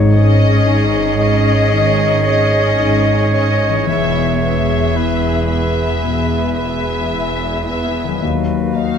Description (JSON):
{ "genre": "cinematic, emotional film score for orchestra", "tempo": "56 BPM", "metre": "4/4", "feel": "rubato", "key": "unclear", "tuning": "A4 = 440 Hz", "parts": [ { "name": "bright clarinet", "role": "second line", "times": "0.0-9.0 s", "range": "Gb4 to Ab4", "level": "-26 LUFS", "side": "equal", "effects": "none" }, { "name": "mellow cor anglais", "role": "second line", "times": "0.0-9.0 s", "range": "B4 to Db5", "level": "-23 LUFS", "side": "right 5 dB", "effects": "none" }, { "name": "mellow hollow silver concert flute", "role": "second line", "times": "0.0-9.0 s", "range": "Eb5 to F5", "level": "-23 LUFS", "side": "left 2 dB", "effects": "none" }, { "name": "dark grand piano", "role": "accompaniment", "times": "0.0-9.0 s", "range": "Eb2 to Eb5", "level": "-21 LUFS", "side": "left 4 dB", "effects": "none" }, { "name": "concert harp", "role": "arpeggios", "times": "0.0-9.0 s", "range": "Ab2 to F5", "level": "-25 LUFS", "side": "left 12 dB", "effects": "none" }, { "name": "muted symphonic cello section", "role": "bass", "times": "0.0-9.0 s", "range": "Eb2 to Ab2", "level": "-20 LUFS", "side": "right 2 dB", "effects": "none" }, { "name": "muted symphonic double bass section", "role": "bass", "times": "0.0-9.0 s", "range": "E1 to Eb2", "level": "-20 LUFS", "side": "right 2 dB", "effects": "none" }, { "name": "muted symphonic violin section", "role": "melody", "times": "0.1-9.0 s", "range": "Eb5 to F5", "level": "-22 LUFS", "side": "left 4 dB", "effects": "none" }, { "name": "muted symphonic viola section", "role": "accompaniment", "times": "0.1-9.0 s", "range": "B3 to Eb4", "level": "-25 LUFS", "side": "right 2 dB", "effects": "none" }, { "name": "muted symphonic violin section", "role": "second line", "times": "0.2-9.0 s", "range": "Gb4 to Ab4", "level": "-28 LUFS", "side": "left 2 dB", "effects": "none" } ], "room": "moderate concert hall reverb, RT60 2.2 s", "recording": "none", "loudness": "-13 LUFS", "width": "side -7 dB against mid", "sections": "0.0-9.0 A section", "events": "none", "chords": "0.0 Absus4; 3.9 E; 8.2 Ebmadd9" }